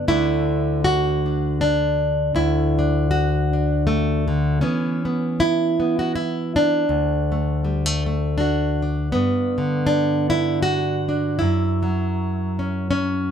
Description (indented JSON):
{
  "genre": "folk, solo fingerstyle acoustic guitar",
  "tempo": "80 BPM",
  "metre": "3/4",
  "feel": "swing 55% on 8ths",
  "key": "D major",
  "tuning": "A4 = 442 Hz",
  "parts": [
    { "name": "nylon-string guitar", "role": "solo", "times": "0.0-13.3 s", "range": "D2 to F#4", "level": "-18 LUFS", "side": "equal", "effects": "none" }
  ],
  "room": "light reverb",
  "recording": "close, detailed microphones",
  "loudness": "-18 LUFS",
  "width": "side -8 dB against mid",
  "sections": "0.0-9.1 A section; 9.1-13.3 B section",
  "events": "none",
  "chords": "0.1 Dadd9; 4.6 Dmaj7sus2/E; 6.9 D; 9.1 G; 11.4 F#7(no3)"
}